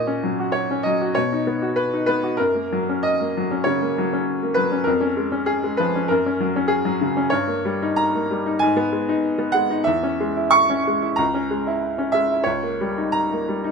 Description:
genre	classical, romantic character piece for solo piano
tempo	85-102 BPM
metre	4/4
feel	rubato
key	unclear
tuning	A4 = 440 Hz
part	bright upright piano	solo	0.0-13.7 s	C#2 to C#6	-19 LUFS	equal	none
room	light reverb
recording	close, detailed microphones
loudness	-19 LUFS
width	side -5 dB against mid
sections	0.0-13.7 A section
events	none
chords	0.0 F#/A#; 1.2 B; 2.4 F#; 4.9 C#/E#; 6.1 F#; 7.3 D#7/G; 8.6 G#m; 9.9 E6; 11.2 A#m7b5/C#; 12.5 D#7/C#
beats	0.53 1.15 1.78 | 2.39 3.05 3.67 4.29 | 4.88 5.48 6.09 6.70 | 7.31 7.97 8.61 9.22 | 9.86 10.54 11.19 11.83 | 12.46 13.15

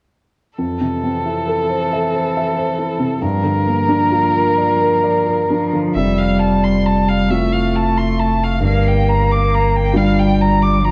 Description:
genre	neoclassical piano and strings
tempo	45 BPM (dotted quarters)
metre	6/8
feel	rubato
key	F major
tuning	A4 = 442 Hz
part	muted violin	melody	0.6-10.9 s	A4 to D6	-22 LUFS	equal	none
part	muted cello	second line	0.6-10.9 s	E3 to Bb3	-22 LUFS	equal	none
part	dark baby grand piano	accompaniment	0.6-10.9 s	F2 to E5	-21 LUFS	equal	none
part	saturated sub bass	bass	6.0-10.9 s	F1 to G1	-22 LUFS	equal	none
room	moderate recital hall reverb, RT60 1.8 s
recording	worn, warbling old tape, cassette tape, warbly pitch drift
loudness	-16 LUFS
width	mono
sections	0.6-6.0 A section; 6.0-10.9 B section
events	none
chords	0.6 Fmaj7; 3.2 Gm7; 6.0 Fmaj7; 8.6 Gm7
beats	| 0.60 1.92 | 3.23 4.58 | 5.96 7.29 | 8.62 9.94

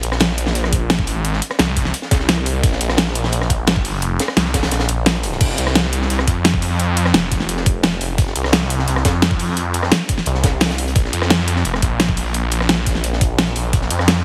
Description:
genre	dark technical drum and bass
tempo	173 BPM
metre	4/4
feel	straight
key	unclear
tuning	A4 = 440 Hz
part	phased detuned saw bass	bass	0.0-14.2 s	F1 to F2	-22 LUFS	equal	phaser, tube saturation
part	crunchy breakbeat drum kit	drums	0.0-14.2 s	hi-hat, snare drum	-28 LUFS	equal	high-pass filter on hats, studio reverb, high-pass filter on snare, high-pass filter on room
part	dubstep drum kit	drums	0.0-14.1 s	crash cymbal, hi-hat, rim click, snare drum	-21 LUFS	equal	studio reverb
part	electronic kick drum	drums	0.7-13.8 s	none	-20 LUFS	equal	studio reverb
room	studio reverb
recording	heavily compressed radio sound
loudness	-18 LUFS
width	mono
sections	0.0-5.4 A section; 5.4-14.2 A section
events	drop 0.0-5.4, 5.4-14.2; kick drops out 4.7-5.4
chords	none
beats	0.21 0.55 0.90 | 1.25 1.59 1.94 2.29 | 2.63 2.98 3.33 3.67 | 4.02 4.37 4.71 5.06 | 5.41 5.75 6.10 6.45 | 6.80 7.14 7.49 7.84 | 8.18 8.53 8.88 9.22 | 9.57 9.92 10.26 10.61 | 10.96 11.30 11.65 12.00 | 12.35 12.69 13.04 13.38 | 13.73 14.08

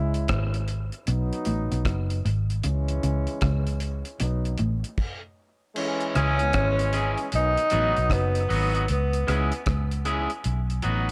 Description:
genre	dub reggae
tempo	77 BPM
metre	4/4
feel	swing 64% on 16ths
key	C# minor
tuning	A4 = 441 Hz
part	bright trombone section	second line	0.0-8.5 s	D#3 to E4	-34 LUFS	equal	dub echo
part	mellow electric guitar	riff	0.0-6.4 s	F#2 to C#3	-36 LUFS	equal	none
part	vintage muted fingered electric bass	bass	0.0-11.1 s	F#1 to C#2	-28 LUFS	equal	none
part	deep reggae drum kit	drums	0.1-11.1 s	crash cymbal, hi-hat, kick drum, rim click	-33 LUFS	equal	none
part	electric guitar at the edge of break-up	accompaniment	6.1-11.1 s	F#3 to G#4	-32 LUFS	equal	dub echo
part	breathy tenor saxophone	melody	6.2-9.6 s	B3 to D#4	-29 LUFS	equal	dub echo
room	moderate spring reverb, RT60 2.0 s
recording	none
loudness	-25 LUFS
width	mono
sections	0.0-5.8 A section; 5.8-11.1 B section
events	break 0.0-5.8, 8.9-11.1; stop 5.0-5.8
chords	0.0 C#m; 1.1 B; 2.6 C#m; 4.2 B5; 5.8 C#m; 7.3 B; 8.9 C#m; 10.4 B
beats	0.29 1.07 1.85 | 2.63 3.42 4.20 4.98 | 5.76 6.54 7.32 8.10 | 8.88 9.66 10.44

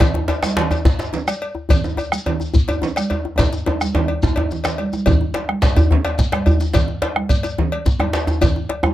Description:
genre	west african traditional, West African drum ensemble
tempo	143 BPM (dotted quarters)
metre	12/8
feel	straight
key	none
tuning	none
part	bombo	percussion	0.0-8.9 s	none	-18 LUFS	right 1 dB	none
part	congas	percussion	0.0-8.9 s	none	-25 LUFS	right 5 dB	none
part	cowbell	percussion	0.0-8.8 s	none	-26 LUFS	left 2 dB	none
part	djembe	percussion	0.0-8.9 s	none	-23 LUFS	left 3 dB	none
part	djembe	percussion	0.0-8.9 s	none	-20 LUFS	equal	none
part	shekere	percussion	0.0-8.5 s	none	-28 LUFS	left 2 dB	none
room	little or no reverb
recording	close, detailed microphones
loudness	-16 LUFS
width	side -14 dB against mid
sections	0.0-5.1 A section; 5.1-8.9 B section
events	drum fill 3.4-5.1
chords	none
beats	| 0.00 0.43 0.85 1.27 | 1.70 2.12 2.54 2.97 | 3.39 3.81 4.23 4.65 | 5.07 5.49 5.91 6.33 | 6.74 7.16 7.58 8.00 | 8.41 8.83

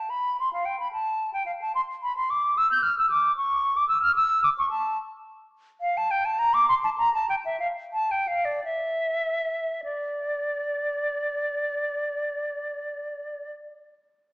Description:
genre	classical, baroque-style fantasia for unaccompanied flute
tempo	47-75 BPM (dotted quarters)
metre	6/8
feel	rubato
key	D minor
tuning	A4 = 440 Hz
part	silver concert flute	solo	0.0-13.5 s	D5 to G6	-23 LUFS	equal	none
room	wet recital hall reverb, RT60 1.5 s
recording	heard from further back in the room, small speaker sound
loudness	-23 LUFS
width	side -24 dB against mid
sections	0.0-9.8 A section; 9.8-14.3 B section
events	slowing down 5.0-9.8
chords	none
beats	0.10 | 0.92 1.74 | 2.55 3.35 | 4.17 4.99 | 5.82 6.68 | 7.60 8.64 | 9.83 10.99 | 12.17 13.34

